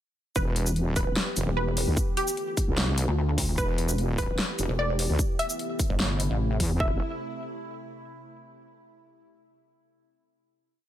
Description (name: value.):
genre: heavy wobble dubstep.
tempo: 149 BPM.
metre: 4/4.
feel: half-time.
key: E phrygian.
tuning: A4 = 441 Hz.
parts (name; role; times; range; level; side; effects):
wide unison pluck; melody; 0.4-7.0 s; G4 to E5; -32 LUFS; right 1 dB; digital delay.
evolving wavetable pad; sustained chords; 1.1-7.0 s; C3 to G4; -36 LUFS; equal; phaser, built-in reverb, sidechain pumping.
wobble bass; bass; 0.4-7.0 s; E1 to E2; -27 LUFS; equal; chorus, overdrive.
dubstep drum kit; drums; 0.4-6.7 s; hi-hat, shaker, snare drum; -30 LUFS; left 1 dB; none.
electronic kick drum; drums; 0.4-6.9 s; none; -28 LUFS; equal; none.
pulsing pluck wobble bass; bass; 1.5-6.6 s; E1 to D2; -26 LUFS; equal; chorus, overdrive.
room: little or no reverb.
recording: none.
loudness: -24 LUFS.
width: side -12 dB against mid.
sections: 0.4-6.8 drop; 6.8-8.4 final chord.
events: drop 0.4-6.8.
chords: 0.4 Em; 2.0 Dm; 3.6 Em; 5.2 Am; 6.8 Em.